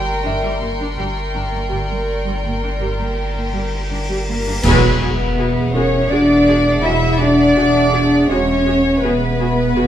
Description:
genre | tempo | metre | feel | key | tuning
cinematic, suspense film score | 82 BPM | 5/4 | straight | unclear | A4 = 435 Hz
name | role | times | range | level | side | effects
warm symphonic violin section | melody | 0.0-9.9 s | Bb4 to G5 | -24 LUFS | left 2 dB | none
warm studio violin section | second line | 0.0-9.9 s | Bb4 to E5 | -24 LUFS | left 2 dB | none
warm studio viola section | accompaniment | 0.0-9.8 s | G3 to G#4 | -26 LUFS | right 1 dB | none
warbly tape-like pad | sustained chords | 0.0-9.9 s | G#4 to G5 | -27 LUFS | equal | chorus, built-in reverb, phaser
warm sub bass | drone | 0.0-9.9 s | E1 to G1 | -25 LUFS | equal | none
felt-muted upright piano | texture | 0.0-9.9 s | A#4 to E5 | -30 LUFS | left 1 dB | none
rich studio violin section | texture | 0.0-4.2 s | Bb5 to C#6 | -32 LUFS | left 3 dB | none
dark studio cello section | bass | 0.2-9.9 s | G2 to E4 | -18 LUFS | equal | none
rich studio double bass section | bass | 0.3-9.9 s | E1 to G1 | -22 LUFS | right 4 dB | none
cymbal swell and impact | sound effects | 3.4-8.3 s | none | -26 LUFS | equal | none
mellow French horn section | sustained chords | 4.3-9.9 s | Bb3 to E4 | -23 LUFS | left 3 dB | none
clear trombone section | sustained chords | 4.6-8.6 s | F#3 to G#3 | -27 LUFS | right 4 dB | none
clash cymbals and concert bass drum | percussion | 4.6-6.1 s | none | -23 LUFS | equal | none
room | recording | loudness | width
moderate recital hall reverb, RT60 1.5 s | none | -14 LUFS | side -10 dB against mid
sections
0.0-4.6 A section; 4.6-9.9 B section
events
cymbal swell 3.4-4.6; band accent 4.6-5.4; impact 4.6-8.3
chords
0.0 Gm; 4.6 Eadd9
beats
0.24 | 0.98 1.71 2.44 3.17 3.90 | 4.64 5.37 6.10 6.83 7.56 | 8.29 9.03 9.76

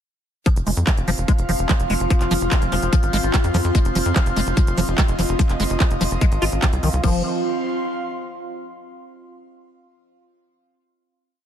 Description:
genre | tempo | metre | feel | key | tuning
psychedelic trance | 146 BPM | 4/4 | straight | unclear | A4 = 440 Hz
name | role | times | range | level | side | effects
overtone-sweeping drone | sustained chords | 1.1-7.1 s | F3 to F4 | -27 LUFS | left 2 dB | chorus, built-in reverb, phaser, vintage 12-bit sampler grit, sidechain pumping
liquid acid bass | riff | 0.5-7.2 s | Eb3 to F4 | -25 LUFS | moving between left 5 dB and right 3 dB | chorus, auto-pan, sidechain pumping, digital delay
electronic kick drum | drums | 0.5-7.1 s | none | -18 LUFS | equal | none
techno drum kit | drums | 0.5-7.1 s | crash cymbal, handclaps, hi-hat | -28 LUFS | right 1 dB | none
airy breathy pad | texture | 0.5-8.6 s | C4 to C6 | -28 LUFS | right 2 dB | chorus, sidechain pumping
tight sequencer bass | bass | 0.6-7.2 s | F1 to F2 | -22 LUFS | equal | none
room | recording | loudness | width
little or no reverb | none | -17 LUFS | side -9 dB against mid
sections
0.5-7.0 drop; 7.0-8.7 final chord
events
drop 0.5-7.0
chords
0.5 F5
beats
| 0.46 0.87 1.28 1.69 | 2.10 2.52 2.93 3.34 | 3.75 4.16 4.57 4.98 | 5.39 5.80 6.21 6.62 | 7.04 7.45 7.86 8.27

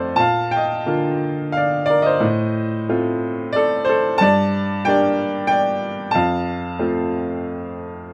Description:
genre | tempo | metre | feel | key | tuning
classical, lyrical solo piano | 91 BPM | 3/4 | uneven beats, rubato | unclear | A4 = 441 Hz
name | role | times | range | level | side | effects
bright upright piano | solo | 0.0-8.1 s | F2 to A5 | -20 LUFS | equal | none
room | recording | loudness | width
light reverb | close, detailed microphones | -20 LUFS | mono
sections
0.0-8.1 A section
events
none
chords
0.2 Bb; 2.2 F/A; 4.2 Gm; 6.1 F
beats
| 0.18 0.88 1.56 | 2.22 2.89 3.55 | 4.21 4.86 5.51 | 6.15 6.81 7.51

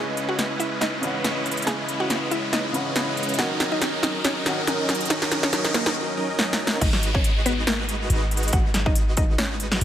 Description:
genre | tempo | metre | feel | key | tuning
future bass | 140 BPM | 4/4 | swing 55% on 16ths, half-time | G# minor | A4 = 440 Hz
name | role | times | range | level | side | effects
mallet-like synth pluck | melody | 0.0-9.8 s | A#3 to G#5 | -30 LUFS | equal | chorus, sidechain pumping, digital delay
felt-muted upright piano | accompaniment | 0.0-6.8 s | C#3 to F#5 | -30 LUFS | equal | sidechain pumping, digital delay
supersaw chords | riff | 0.0-9.8 s | F#3 to D#5 | -28 LUFS | right 1 dB | vintage 12-bit sampler grit, sidechain pumping, low-pass filter, digital delay
warm 808-style bass | bass | 0.0-9.8 s | G#1 to D#2 | -26 LUFS | equal | sidechain pumping, high-pass filter
riser and downlifter | sound effects | 0.0-9.8 s | none | -31 LUFS | equal | none
big-room dance drum kit | drums | 0.2-9.8 s | crash cymbal, hi-hat, snare drum | -25 LUFS | equal | none
electronic kick drum | drums | 6.8-9.3 s | none | -22 LUFS | equal | none
room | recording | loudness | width
moderate lush hall reverb, RT60 1.9 s | none | -21 LUFS | side -11 dB against mid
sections
0.0-6.8 A section; 6.8-9.8 B section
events
build-up 0.0-6.8; drum fill 0.0-6.0, 6.4-6.8; riser 0.0-6.0; drop 6.8-9.8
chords
0.0 C#m9; 3.4 D#m7; 6.8 G#m7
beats
0.39 0.82 1.24 | 1.67 2.10 2.53 2.96 | 3.39 3.82 4.24 4.67 | 5.10 5.53 5.96 6.39 | 6.82 7.24 7.67 8.10 | 8.53 8.96 9.39 9.82

